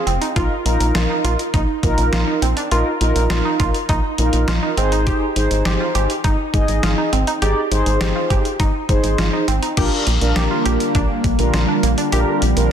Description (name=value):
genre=synth-pop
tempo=102 BPM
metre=4/4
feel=straight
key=unclear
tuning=A4 = 440 Hz
part: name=mellow synth brass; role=accompaniment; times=0.0-12.7 s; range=D4 to Eb5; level=-21 LUFS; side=equal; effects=chorus
part: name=wide unison pluck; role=arpeggios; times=0.0-12.4 s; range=Bb3 to G4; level=-23 LUFS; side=moving between left 1 dB and right 5 dB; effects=auto-pan, ping-pong delay
part: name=rubbery square bass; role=bass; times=0.1-12.7 s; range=F1 to Bb1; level=-19 LUFS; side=equal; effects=none
part: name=detuned 8-bit digital drum machine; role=drums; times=0.1-12.7 s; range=crash cymbal, hi-hat, kick drum, snare drum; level=-22 LUFS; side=equal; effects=none
part: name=phased analog pad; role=sustained chords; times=10.2-12.7 s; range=D3 to C4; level=-22 LUFS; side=right 2 dB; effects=phaser, chorus
room=light reverb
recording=dense, heavily limited modern master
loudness=-15 LUFS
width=side -8 dB against mid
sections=0.0-9.8 A section; 9.8-12.7 B section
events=none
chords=0.4 Bbsus4; 4.8 Ab; 9.8 Bb6